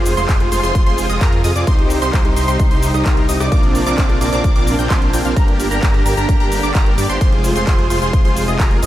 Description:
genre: EDM, festival progressive house.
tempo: 130 BPM.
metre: 4/4.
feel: straight.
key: unclear.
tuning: A4 = 440 Hz.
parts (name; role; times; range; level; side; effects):
rich chamber string section; sustained chords; 0.0-8.9 s; C3 to G4; -24 LUFS; left 1 dB; sidechain pumping.
wide unison pluck; arpeggios; 0.0-8.9 s; Bb5 to G6; -24 LUFS; right 1 dB; phaser, sidechain pumping, diffuse ambient delay.
supersaw chords; riff; 0.0-8.9 s; C4 to G5; -20 LUFS; right 1 dB; cassette tape, sidechain pumping, diffuse ambient delay.
wide detuned saw bass; bass; 0.0-8.9 s; F1 to G2; -21 LUFS; equal; chorus, sidechain pumping.
big-room dance drum kit; drums; 0.1-8.9 s; handclaps, hi-hat, rim click, shaker; -26 LUFS; equal; none.
electronic kick drum; drums; 0.3-8.7 s; none; -15 LUFS; equal; none.
room: light reverb, digital ambience.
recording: none.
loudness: -13 LUFS.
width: side -14 dB against mid.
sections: 0.0-8.9 A section.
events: none.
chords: 0.0 Fm; 1.7 Cm; 3.5 Bbadd9; 5.4 Gm; 7.2 Fm.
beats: 0.29 0.75 1.21 | 1.67 2.13 2.60 3.06 | 3.52 3.98 4.44 4.90 | 5.37 5.83 6.29 6.75 | 7.21 7.67 8.13 8.60.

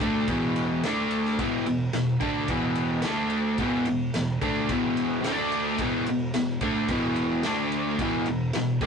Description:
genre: garage rock duo or trio.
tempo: 109 BPM.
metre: 4/4.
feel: straight.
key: unclear.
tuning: A4 = 440 Hz.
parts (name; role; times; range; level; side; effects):
overdriven electric guitar; riff; 0.0-8.9 s; E2 to D4; -24 LUFS; equal; none.
fuzz picked electric bass; bass; 0.0-8.9 s; E1 to D2; -36 LUFS; left 1 dB; overdrive.
raw garage drum kit; drums; 0.0-8.9 s; kick drum, ride cymbal, snare drum; -34 LUFS; equal; none.
room: wet booth ambience, RT60 0.2 s.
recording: rough rehearsal-room recording, warm saturation, nothing above 10.9 kHz.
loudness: -24 LUFS.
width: side -6 dB against mid.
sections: 0.0-8.9 A section.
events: none.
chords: 0.0 E5; 0.8 D5; 1.4 E5; 3.0 D5; 3.6 E5; 5.2 D5; 5.8 E5; 7.4 D5; 8.0 E5.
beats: 0.28 0.83 | 1.38 1.94 2.49 3.04 | 3.59 4.14 4.69 5.24 | 5.79 6.34 6.89 7.44 | 7.99 8.54.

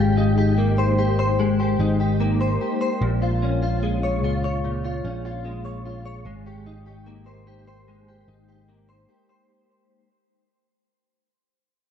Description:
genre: dream pop.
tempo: 74 BPM.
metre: 4/4.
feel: straight.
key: Ab major.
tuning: A4 = 440 Hz.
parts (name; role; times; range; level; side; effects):
direct-recorded clean electric guitar; arpeggios; 0.0-10.1 s; Bb2 to Db5; -23 LUFS; left 2 dB; ensemble chorus, tape echo.
picked electric bass; bass; 0.0-9.1 s; Ab1 to Db2; -24 LUFS; right 1 dB; none.
room: light reverb, digital ambience.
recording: echo-heavy mix.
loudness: -20 LUFS.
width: side -8 dB against mid.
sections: 0.0-9.5 A section.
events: fade-out 0.0-9.5.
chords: 0.0 Abmaj9; 3.0 Bbm7; 6.3 Abmaj9.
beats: 0.58 1.39 2.20 | 3.01 3.82 4.63 5.44 | 6.25 7.06 7.87 8.68.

